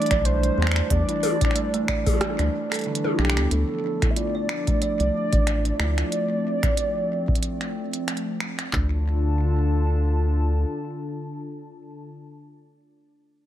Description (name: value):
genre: IDM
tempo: 92 BPM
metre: 4/4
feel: swing 56% on 16ths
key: D minor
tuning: A4 = 440 Hz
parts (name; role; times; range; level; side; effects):
- warbly nostalgic lead; melody; 0.0-8.0 s; G4 to E5; -29 LUFS; right 1 dB; tremolo, lush chorus, digital delay
- hollow soft pad; sustained chords; 0.0-12.1 s; D3 to A5; -29 LUFS; left 2 dB; chorus, sidechain pumping
- glitchy drum kit; drums; 0.0-8.7 s; finger snaps, hi-hat, rim click, toms; -28 LUFS; equal; overdrive
- kalimba; arpeggios; 0.1-9.0 s; D3 to D5; -30 LUFS; right 4 dB; vintage 12-bit sampler grit, tape echo
- rubbery square bass; bass; 0.1-10.6 s; A1 to E2; -22 LUFS; equal; tube saturation
- electro analog drum machine; drums; 0.1-8.9 s; handclaps, kick drum; -24 LUFS; equal; none
room: light reverb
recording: none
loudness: -21 LUFS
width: side -12 dB against mid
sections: 0.0-3.5 A section; 3.5-8.7 B section; 8.7-11.3 C section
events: kick drops out 2.2-3.5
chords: 0.0 Em7; 3.5 Dm